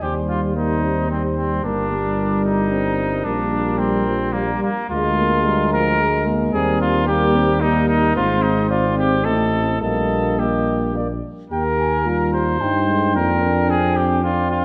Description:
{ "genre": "classical, brass quintet", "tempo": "111 BPM", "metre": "3/4", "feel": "straight", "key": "Eb major from 4.9 s", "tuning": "A4 = 443 Hz", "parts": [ { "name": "dark trumpet", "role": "melody", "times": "0.0-14.6 s", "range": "Bb4 to Bb5", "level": "-30 LUFS", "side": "equal", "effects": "none" }, { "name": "clear trumpet", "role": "second line", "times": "0.0-14.6 s", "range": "Bb3 to C5", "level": "-24 LUFS", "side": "equal", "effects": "none" }, { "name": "mellow trombone", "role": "accompaniment", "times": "0.0-14.6 s", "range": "F3 to D4", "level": "-27 LUFS", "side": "equal", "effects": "none" }, { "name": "warm French horn", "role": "accompaniment", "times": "0.0-14.6 s", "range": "G3 to G4", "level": "-27 LUFS", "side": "equal", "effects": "none" }, { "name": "dark bass trombone", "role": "bass", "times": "0.0-14.6 s", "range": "G1 to G2", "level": "-25 LUFS", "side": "equal", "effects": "none" } ], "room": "wet recital hall reverb, RT60 1.6 s", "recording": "none", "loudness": "-19 LUFS", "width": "mono", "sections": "0.0-11.5 A section; 11.5-14.6 B section", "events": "none", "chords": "0.0 Cm/Eb; 1.6 Gm; 3.3 Gm/Bb; 4.9 Bb7/D; 6.5 Eb; 8.2 Abmaj7#11; 9.3 Adim; 9.8 Eb/Bb; 11.5 Eb; 13.1 Bb/F" }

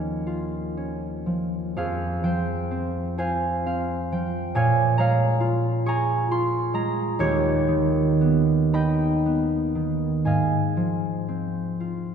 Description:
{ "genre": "classical, solo harp piece", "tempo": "37-47 BPM (dotted quarters)", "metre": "6/8", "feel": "rubato", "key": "unclear", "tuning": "A4 = 440 Hz", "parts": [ { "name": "concert harp", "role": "solo", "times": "0.0-12.1 s", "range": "Eb2 to Db6", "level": "-21 LUFS", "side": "right 1 dB", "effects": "none" } ], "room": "wet church reverb, RT60 2.5 s", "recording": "minimal, uncompressed stereo recording", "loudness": "-21 LUFS", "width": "side -7 dB against mid", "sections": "0.0-12.1 A section", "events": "none", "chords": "0.0 Eb9sus4; 1.8 Fmadd9; 4.5 Bbm7; 7.2 Ebaug7; 10.3 Ab6" }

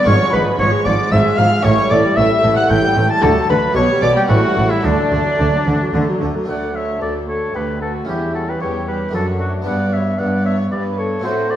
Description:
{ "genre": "classical, baroque-style concerto movement with solo episodes", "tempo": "114 BPM", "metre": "3/4", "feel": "straight", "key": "D major", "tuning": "A4 = 440 Hz", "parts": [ { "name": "clear oboe", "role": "melody", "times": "0.0-11.6 s", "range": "D4 to A5", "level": "-21 LUFS", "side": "left 1 dB", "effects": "none" }, { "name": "rich chamber violin section", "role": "melody", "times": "0.0-11.6 s", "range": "C#4 to A6", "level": "-27 LUFS", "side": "left 1 dB", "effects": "none" }, { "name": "warm chamber violin section", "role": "second line", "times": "0.0-11.6 s", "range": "D4 to A5", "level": "-21 LUFS", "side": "left 1 dB", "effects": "none" }, { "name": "harpsichord", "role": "accompaniment", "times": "0.0-11.6 s", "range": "D2 to G4", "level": "-22 LUFS", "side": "equal", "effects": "none" }, { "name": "warm chamber viola section", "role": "accompaniment", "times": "0.0-11.6 s", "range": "E#3 to B3", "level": "-23 LUFS", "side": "right 2 dB", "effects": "none" }, { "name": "rich chamber cello section", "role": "bass", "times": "0.1-11.6 s", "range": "D2 to D3", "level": "-21 LUFS", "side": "right 1 dB", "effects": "none" }, { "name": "rich chamber double bass section", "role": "bass", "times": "0.1-6.3 s", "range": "G#1 to D2", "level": "-21 LUFS", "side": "right 1 dB", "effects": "none" } ], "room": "wet recital hall reverb, RT60 1.8 s", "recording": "worn, warbling old tape, cassette tape, warbly pitch drift", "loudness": "-14 LUFS", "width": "side -11 dB against mid", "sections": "0.0-6.5 A section; 6.5-11.6 B section", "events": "none", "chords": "0.1 G#dim7; 1.6 A7; 3.2 D; 3.8 G/B; 4.3 A7; 4.8 D; 6.5 D5; 8.1 C#dim/E; 9.1 D/F#; 9.7 G" }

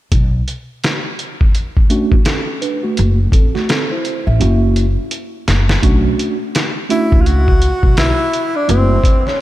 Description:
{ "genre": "hip hop, jazz-hop", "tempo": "84 BPM", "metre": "4/4", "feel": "swing 60% on 16ths", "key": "B minor", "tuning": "A4 = 440 Hz", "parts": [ { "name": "upright bass", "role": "bass", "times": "0.1-9.0 s", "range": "F#1 to C#2", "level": "-15 LUFS", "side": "equal", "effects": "none" }, { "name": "trip hop sampler-style drum kit", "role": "drums", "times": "0.1-9.3 s", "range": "hi-hat, kick drum, snare drum", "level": "-15 LUFS", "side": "equal", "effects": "none" }, { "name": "mellow tine electric piano", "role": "accompaniment", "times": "1.9-9.0 s", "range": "A3 to E5", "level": "-19 LUFS", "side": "right 2 dB", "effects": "medium stereo tremolo" }, { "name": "breathy tenor saxophone", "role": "melody", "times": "6.9-9.4 s", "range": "C4 to F#4", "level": "-16 LUFS", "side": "left 1 dB", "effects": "ping-pong delay" } ], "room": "light reverb", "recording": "none", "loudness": "-12 LUFS", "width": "side -15 dB against mid", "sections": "0.1-5.8 A section; 5.8-9.4 B section", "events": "drum fill 5.1-5.8", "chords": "0.1 Bm7; 3.0 F#m7b5; 4.4 F#7; 5.8 Bm7; 8.7 F#m7b5" }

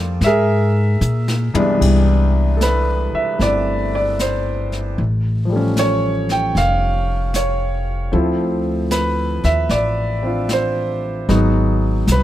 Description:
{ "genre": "jazz ballad", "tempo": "76 BPM", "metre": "4/4", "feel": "swing 66% on 8ths", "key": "C major", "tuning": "A4 = 440 Hz", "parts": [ { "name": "clear concert grand piano", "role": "accompaniment", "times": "0.0-12.2 s", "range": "C2 to G5", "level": "-18 LUFS", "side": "equal", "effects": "none" }, { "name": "upright bass", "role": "bass", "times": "0.0-12.2 s", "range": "E#1 to Bb2", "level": "-19 LUFS", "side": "equal", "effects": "none" }, { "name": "jazz brush drum kit", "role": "drums", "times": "0.2-12.2 s", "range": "brushed snare drum, hi-hat, kick drum, ride cymbal, snare drum, toms", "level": "-24 LUFS", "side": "left 2 dB", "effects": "none" } ], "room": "little or no reverb", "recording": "none", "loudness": "-15 LUFS", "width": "side -13 dB against mid", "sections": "0.0-1.8 A section; 1.8-12.2 B section", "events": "drum fill 1.0-1.8", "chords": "0.2 Caug7; 1.8 Cmaj9; 5.0 Aaug7; 8.1 Dm9; 11.3 Abm7" }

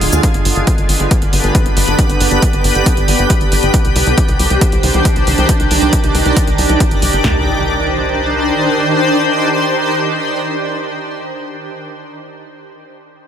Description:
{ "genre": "uplifting trance", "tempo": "137 BPM", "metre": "4/4", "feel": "straight", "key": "C harmonic minor", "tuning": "A4 = 440 Hz", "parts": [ { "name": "shimmering ambient pad", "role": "sustained chords", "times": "0.0-11.2 s", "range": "D3 to D5", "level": "-15 LUFS", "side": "equal", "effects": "chorus, built-in reverb, sidechain pumping" }, { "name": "tight sequencer bass", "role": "bass", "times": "0.0-8.5 s", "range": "D1 to Eb2", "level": "-17 LUFS", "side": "equal", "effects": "sidechain pumping" }, { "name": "electronic hi-hat", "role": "drums", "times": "0.0-7.2 s", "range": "none", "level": "-20 LUFS", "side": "right 1 dB", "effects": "overdrive" }, { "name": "punchy analog drum machine", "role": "drums", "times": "0.2-7.3 s", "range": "kick drum, snare drum, toms", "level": "-14 LUFS", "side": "equal", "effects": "overdrive" }, { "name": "impact", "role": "sound effects", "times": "7.2-11.3 s", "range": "none", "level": "-26 LUFS", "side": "equal", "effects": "none" } ], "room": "light reverb", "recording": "none", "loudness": "-11 LUFS", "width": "side -9 dB against mid", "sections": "0.0-7.2 A section; 7.2-10.7 B section", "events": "none", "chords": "0.2 G; 3.7 Cmadd9" }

